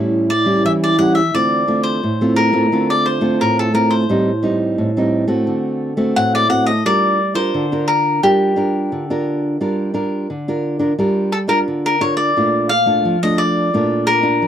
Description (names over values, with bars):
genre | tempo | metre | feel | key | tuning
samba | 87 BPM | 4/4 | straight | G minor | A4 = 440 Hz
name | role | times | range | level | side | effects
cavaquinho | melody | 0.0-14.5 s | G4 to F#5 | -17 LUFS | left 2 dB | none
nylon-string guitar | accompaniment | 0.0-14.5 s | A2 to Bb4 | -16 LUFS | right 1 dB | none
room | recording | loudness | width
moderate booth ambience, RT60 0.2 s | dry, close 1970s-style studio recording | -14 LUFS | side -9 dB against mid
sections
0.0-12.4 A section; 12.4-14.5 B section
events
none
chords
0.0 A7; 1.3 Dm7; 4.1 Am7b5; 5.5 D7; 6.8 Gm7; 12.4 Bbmaj7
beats
0.65 | 1.34 2.03 2.72 3.40 | 4.09 4.78 5.47 6.16 | 6.85 7.54 8.23 8.91 | 9.60 10.29 10.98 11.67 | 12.36 13.05 13.73 14.42